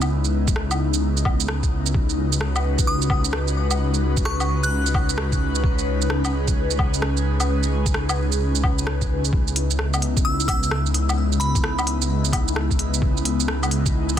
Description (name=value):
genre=future garage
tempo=130 BPM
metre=4/4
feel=swing 64% on 16ths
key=C# minor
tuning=A4 = 440 Hz
part: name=airy breathy pad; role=sustained chords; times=0.0-14.2 s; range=C#3 to B4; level=-26 LUFS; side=left 1 dB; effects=chorus, phaser, vintage 12-bit sampler grit, sidechain pumping
part: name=dark detuned saw bass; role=bass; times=0.0-14.2 s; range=C#2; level=-23 LUFS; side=equal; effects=tube saturation, sidechain pumping
part: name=organic electronic drum kit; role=drums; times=0.0-14.2 s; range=hi-hat, rim click, shaker, woodblock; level=-27 LUFS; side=right 1 dB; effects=studio reverb, soft clipping on snare
part: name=electronic kick drum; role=drums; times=0.5-14.2 s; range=none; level=-22 LUFS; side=equal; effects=studio reverb
part: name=glassy synth bell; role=melody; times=2.9-4.9, 10.2-12.1 s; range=B5 to F#6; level=-30 LUFS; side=left 1 dB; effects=chorus, tremolo, ping-pong delay
room=little or no reverb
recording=dense, heavily limited modern master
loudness=-19 LUFS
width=side -10 dB against mid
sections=0.0-14.2 A section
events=none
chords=0.0 C#m7; 1.9 B/C#; 9.3 C#m7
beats=| 0.10 0.56 1.02 1.48 | 1.95 2.41 2.87 3.33 | 3.79 4.25 4.71 5.18 | 5.64 6.10 6.56 7.02 | 7.48 7.95 8.41 8.87 | 9.33 9.79 10.25 10.71 | 11.18 11.64 12.10 12.56 | 13.02 13.48 13.95